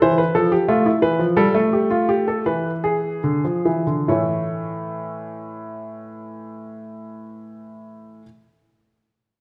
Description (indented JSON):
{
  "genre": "classical, baroque-style two-part invention for grand piano",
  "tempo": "69-92 BPM",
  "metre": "4/4",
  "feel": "straight",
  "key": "unclear",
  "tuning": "A4 = 441 Hz",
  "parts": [
    { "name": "warm baby grand piano", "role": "solo", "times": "0.0-8.2 s", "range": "A2 to C#5", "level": "-21 LUFS", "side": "equal", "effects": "none" }
  ],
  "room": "wet recital hall reverb, RT60 1.4 s",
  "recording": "none",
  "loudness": "-20 LUFS",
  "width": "mono",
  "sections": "0.0-4.1 A section; 4.1-7.6 B section",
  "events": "slowing down 0.0-4.1",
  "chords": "0.0 Dm (rootless); 1.0 Esus4 (rootless); 2.5 E7; 4.1 A",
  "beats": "0.34 | 1.02 1.72 2.46 3.24 | 4.08 4.95 5.82 6.68"
}